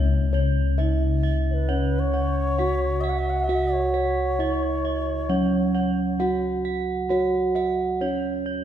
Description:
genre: gamelan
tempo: 66 BPM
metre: 4/4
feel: straight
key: unclear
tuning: A4 = 440 Hz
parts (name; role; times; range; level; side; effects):
- gamelan-type bronze metallophone; melody; 0.0-8.6 s; C#4 to F#4; -26 LUFS; right 5 dB; none
- gamelan-type bossed gongs; arpeggios; 0.0-8.5 s; C#5 to F#5; -34 LUFS; left 3 dB; none
- gamelan-type bronze metallophone; arpeggios; 0.0-8.6 s; C#5 to F#5; -31 LUFS; right 3 dB; none
- gamelan-type bossed gongs; bass; 0.0-8.6 s; C#2 to F#4; -24 LUFS; left 2 dB; none
- bright reedy xiao; second line; 1.5-6.5 s; B4-28c to F#5; -28 LUFS; left 2 dB; none
room: wet concert hall reverb, RT60 1.8 s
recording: heard from further back in the room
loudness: -21 LUFS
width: side -10 dB against mid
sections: 0.0-8.6 A section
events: none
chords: none

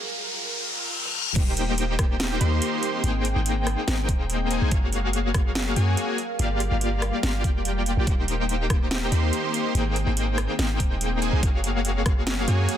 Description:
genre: future bass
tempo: 143 BPM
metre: 4/4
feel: half-time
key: Eb major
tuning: A4 = 441 Hz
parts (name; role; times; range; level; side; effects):
- ethereal airy pad; sustained chords; 0.0-12.8 s; Eb3 to G5; -35 LUFS; right 1 dB; ensemble chorus, built-in reverb, sidechain pumping
- riser and reverse cymbal; sound effects; 0.0-1.4 s; none; -27 LUFS; left 3 dB; none
- trap drum kit; drums; 1.1-12.8 s; crash cymbal, hi-hat, rim click, snare drum, toms; -29 LUFS; right 1 dB; overdrive
- big bright polysynth; riff; 1.4-12.8 s; Bb3 to C6; -26 LUFS; left 2 dB; sidechain pumping, digital delay
- warm 808-style bass; bass; 1.4-12.7 s; Eb1 to Gb2; -25 LUFS; equal; sidechain pumping
- electronic kick drum; drums; 1.4-12.1 s; none; -23 LUFS; equal; none
room: little or no reverb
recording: dense, heavily limited modern master, high-pass filter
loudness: -22 LUFS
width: side -10 dB against mid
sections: 0.0-1.4 A section; 1.4-12.8 B section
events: break 0.0-1.4; build-up 0.0-1.4; riser 0.0-1.4; reverse cymbal 0.5-1.4; drum fill 1.0-1.4; drop 1.4-12.8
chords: 0.0 Gm7; 1.4 Eb6; 3.0 Abmaj9; 4.7 Gbmaj9; 6.2 Gm7; 8.1 Eb6; 9.8 Abmaj9; 11.4 Gbmaj9

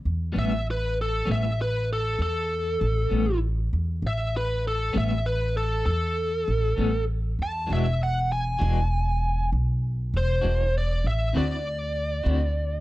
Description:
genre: blues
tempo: 65 BPM (dotted quarters)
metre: 12/8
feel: straight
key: unclear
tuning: A4 = 440 Hz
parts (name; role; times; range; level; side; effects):
- upright bass; bass; 0.1-12.8 s; E1 to E2; -25 LUFS; equal; none
- clean electric guitar; accompaniment; 0.3-12.4 s; A2 to F#4; -28 LUFS; left 2 dB; tremolo
- biting lead guitar; melody; 0.4-12.8 s; A4 to A5; -28 LUFS; equal; overdrive
room: light reverb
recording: dark, warm production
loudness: -23 LUFS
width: side -16 dB against mid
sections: 0.0-12.8 A section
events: lead electric guitar solo 0.0-12.8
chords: 0.3 A9; 7.7 E9; 11.4 D9

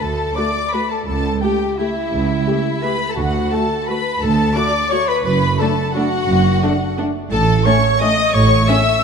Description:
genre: classical, orchestral ballroom waltz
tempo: 173 BPM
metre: 3/4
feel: uneven beats, rubato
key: D major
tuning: A4 = 440 Hz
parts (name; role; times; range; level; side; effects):
- warm studio violin section; melody; 0.0-9.0 s; E5 to E6; -24 LUFS; left 3 dB; none
- clear clarinet; second line; 0.0-9.0 s; E4 to E5; -23 LUFS; left 2 dB; none
- mellow hollow small flute group; second line; 0.0-9.0 s; E5 to E6; -24 LUFS; right 1 dB; none
- warm studio violin section; second line; 0.0-9.0 s; E4 to E5; -24 LUFS; left 3 dB; none
- warm chamber cello section; bass; 0.0-8.6 s; C#2 to A2; -22 LUFS; right 3 dB; none
- warm studio double bass section; bass; 0.0-8.6 s; F#1 to D2; -22 LUFS; right 4 dB; none
- rich studio viola section; accompaniment; 0.4-8.8 s; A3 to G4; -25 LUFS; equal; none
- mellow French horn section; sustained chords; 0.4-8.8 s; A3 to A4; -26 LUFS; left 3 dB; none
room: moderate scoring stage reverb, RT60 2.1 s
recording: dark, warm production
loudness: -15 LUFS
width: side -6 dB against mid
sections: 0.0-9.0 A section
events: none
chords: 0.0 D; 1.1 A7/C#; 3.2 D; 5.2 D/F#; 7.3 A

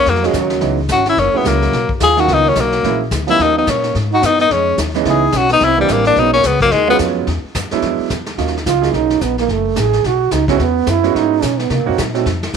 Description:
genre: jazz, small-group swing and bop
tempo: 216 BPM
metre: 4/4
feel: swing 59% on 8ths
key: Eb minor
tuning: A4 = 441 Hz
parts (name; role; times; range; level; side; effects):
- clear tenor saxophone; melody; 0.0-7.0 s; Gb3 to Ab4; -14 LUFS; left 4 dB; none
- breathy trombone; second line; 0.0-12.0 s; Db3 to Ab4; -19 LUFS; right 11 dB; none
- upright bass; bass; 0.0-12.6 s; Gb1 to C3; -20 LUFS; left 2 dB; transformer saturation
- vintage brush drum kit; drums; 0.1-12.6 s; brushed snare drum, hi-hat, kick drum, snare drum; -23 LUFS; left 1 dB; none
- warm upright piano; accompaniment; 0.2-12.3 s; D#3 to Ab4; -19 LUFS; right 12 dB; none
room: moderate plate reverb, RT60 1.1 s, small room ambience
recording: 1960s-style stereo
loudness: -12 LUFS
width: side -6 dB against mid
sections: 0.0-8.4 A section; 8.4-12.6 B section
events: trombone solo 8.4-12.6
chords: 0.0 Gbmaj7; 0.6 Dbm7; 1.2 Gb7; 1.7 Bmaj9#11; 2.8 Bbm7b5; 3.4 Eb7; 4.0 Abm7; 5.1 Dbm7; 5.6 C9; 6.2 B6; 7.3 E9; 8.4 Ebm7; 9.5 Gbmadd9; 10.0 Bsus2; 10.6 E6; 11.7 Cm7b5

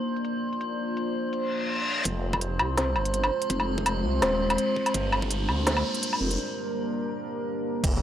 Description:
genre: half-time drum and bass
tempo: 166 BPM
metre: 4/4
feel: swing 55% on 16ths, half-time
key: F dorian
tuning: A4 = 444 Hz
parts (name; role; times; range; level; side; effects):
- deep dark ambient pad; sustained chords; 0.0-8.0 s; G3 to D5; -31 LUFS; left 1 dB; chorus, built-in reverb, vintage 12-bit sampler grit, sidechain pumping
- metallic inharmonic drone; texture; 0.0-6.4 s; C5; -31 LUFS; right 1 dB; chorus, built-in reverb, phaser
- organic electronic drum kit; drums; 0.2-7.9 s; crash cymbal, hi-hat, snare drum, woodblock; -27 LUFS; equal; low-pass filter on hats, low-pass filter on perc, low-pass filter on snare, low-pass filter on cymbals, low-pass filter on room
- reverse cymbal, riser and impact; sound effects; 1.5-8.0 s; none; -34 LUFS; left 2 dB; none
- phased detuned saw bass; bass; 2.1-8.0 s; Eb1 to D2; -28 LUFS; equal; phaser
- electronic kick drum; drums; 2.1-5.3, 7.8-7.9 s; none; -29 LUFS; equal; overdrive, high-pass filter on kick
room: light reverb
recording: dry, gritty hardware recording, transformer saturation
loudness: -25 LUFS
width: side -10 dB against mid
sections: 0.0-2.1 A section; 2.1-7.8 B section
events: reverse cymbal 1.5-2.1; build-up 2.1-7.8; riser 2.1-6.4; break 6.4-7.8; impact 7.8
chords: 0.0 Bb; 2.1 Fm; 4.9 Gm

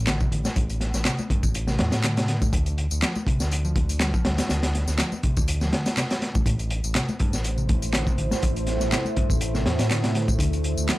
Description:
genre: breakbeat, breaks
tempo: 122 BPM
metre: 4/4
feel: swing 54% on 16ths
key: A minor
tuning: A4 = 440 Hz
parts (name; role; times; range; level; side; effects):
- picked electric bass; riff; 0.0-11.0 s; G2 to G3; -31 LUFS; equal; tube saturation
- overdriven fingered electric bass; bass; 0.0-10.9 s; A1 to A2; -26 LUFS; equal; none
- crunchy breakbeat drum kit; drums; 0.1-11.0 s; hi-hat, kick drum, snare drum; -24 LUFS; equal; none
- electronic handclaps and tambourine; drums; 0.1-11.0 s; none; -30 LUFS; left 1 dB; none
- congas; percussion; 0.4-10.4 s; none; -35 LUFS; left 2 dB; none
- deep dark ambient pad; sustained chords; 7.4-11.0 s; A3 to D5; -30 LUFS; right 2 dB; chorus, built-in reverb, sidechain pumping
room: little or no reverb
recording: dry, gritty hardware recording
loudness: -21 LUFS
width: side -18 dB against mid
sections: 0.0-11.0 A section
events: none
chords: 0.0 Am; 2.5 Dm; 6.5 Am; 10.4 Dm

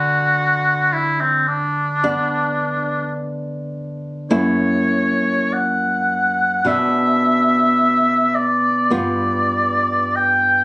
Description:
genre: romantic duo for oboe and classical guitar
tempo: 47-55 BPM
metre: 4/4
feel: rubato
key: unclear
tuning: A4 = 439 Hz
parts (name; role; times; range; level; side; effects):
- clear oboe; melody; 0.0-10.6 s; C4 to G5; -16 LUFS; equal; none
- nylon-string guitar; accompaniment; 0.0-10.6 s; F#2 to F4; -20 LUFS; equal; none
room: light reverb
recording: recorded on a phone in the room, club reverb, compression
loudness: -15 LUFS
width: side -24 dB against mid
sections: 0.0-10.6 A section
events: none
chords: 0.0 Bm/D; 4.3 F#7; 6.6 Bm; 8.9 G7

